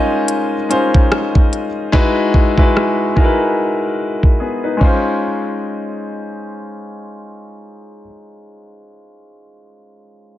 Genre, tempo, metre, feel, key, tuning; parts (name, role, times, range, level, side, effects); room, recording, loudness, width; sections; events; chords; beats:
contemporary R&B; 73 BPM; 4/4; swing 58% on 16ths; Db major; A4 = 440 Hz
clear grand piano; accompaniment; 0.0-10.4 s; Ab3 to F5; -17 LUFS; left 1 dB
trap drum kit; drums; 0.3-5.0 s; crash cymbal, hi-hat, kick drum, rim click; -13 LUFS; equal
light reverb, digital ambience; low-pass filter; -13 LUFS; side -13 dB against mid
0.0-5.2 A section; 5.2-8.5 B section
filter sweep 0.0-5.2; silent gap 4.4-5.2
0.0 Dbmaj9; 1.9 Emaj9; 4.8 Dbmaj9
0.29 1.11 | 1.94 2.76 3.58 4.40 | 5.22 6.04 6.87 7.69